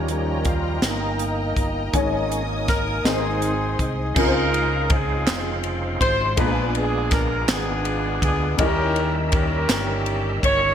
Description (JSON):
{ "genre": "slow gospel", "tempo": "54 BPM (dotted quarters)", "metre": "6/8", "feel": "straight", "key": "Db major", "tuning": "A4 = 441 Hz", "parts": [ { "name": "clear concert grand piano", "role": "accompaniment", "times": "0.0-10.7 s", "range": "Ab2 to Bb5", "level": "-28 LUFS", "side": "left 3 dB", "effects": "ensemble chorus" }, { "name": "clear studio string section", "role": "sustained chords", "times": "0.0-4.2 s", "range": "Eb5 to Eb6", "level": "-32 LUFS", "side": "left 3 dB", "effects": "none" }, { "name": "overdriven tonewheel organ", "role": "sustained chords", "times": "0.0-10.7 s", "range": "Db3 to Fb5", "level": "-28 LUFS", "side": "right 3 dB", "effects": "slow rotary speaker, chorus vibrato" }, { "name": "fingered electric bass", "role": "bass", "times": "0.0-10.7 s", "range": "F1 to Eb2", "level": "-26 LUFS", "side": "equal", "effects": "none" }, { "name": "crisp fusion drum kit", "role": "drums", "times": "0.1-10.6 s", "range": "crash cymbal, hi-hat, kick drum, ride cymbal, snare drum", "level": "-24 LUFS", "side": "equal", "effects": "gated reverb" }, { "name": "mellow horn section", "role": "melody", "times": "2.7-10.7 s", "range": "Cb4 to Db5", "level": "-24 LUFS", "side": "equal", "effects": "ping-pong delay" }, { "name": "group handclap", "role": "percussion", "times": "5.3-10.0 s", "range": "none", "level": "-30 LUFS", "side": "right 8 dB", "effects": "none" } ], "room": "light reverb, studio reverb", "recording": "bright 1980s-style digital production", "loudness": "-19 LUFS", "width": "side -9 dB against mid", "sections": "0.0-4.2 A section; 4.2-10.7 B section", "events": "tonewheel organ solo 0.0-4.2", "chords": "0.0 Eb7; 1.9 Absus4; 3.0 Ab; 4.2 Dbmaj9; 6.4 Bb7b9; 8.6 Eb7b9" }